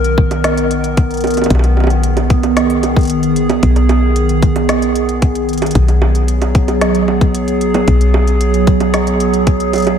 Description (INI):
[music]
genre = IDM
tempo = 113 BPM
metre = 4/4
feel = straight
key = B major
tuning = A4 = 440 Hz
[part]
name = warbly tape-like pad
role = sustained chords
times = 0.0-10.0 s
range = D#3 to A#4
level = -14 LUFS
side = right 2 dB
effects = chorus, built-in reverb, phaser, vintage 12-bit sampler grit
[part]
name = woody FM bass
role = bass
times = 0.0-10.0 s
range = B1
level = -16 LUFS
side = left 1 dB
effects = none
[part]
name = organic electronic drum kit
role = drums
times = 0.0-10.0 s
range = bongos, hi-hat, snare drum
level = -20 LUFS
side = right 3 dB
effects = analog delay
[part]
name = electronic kick drum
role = drums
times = 0.2-9.6 s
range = none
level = -12 LUFS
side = left 1 dB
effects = none
[sound]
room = moderate lush hall reverb, RT60 2.2 s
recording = dreamy mix soaked in reverb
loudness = -11 LUFS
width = side -8 dB against mid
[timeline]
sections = 0.0-10.0 A section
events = none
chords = 0.0 Bmaj7; 5.8 G#m7/B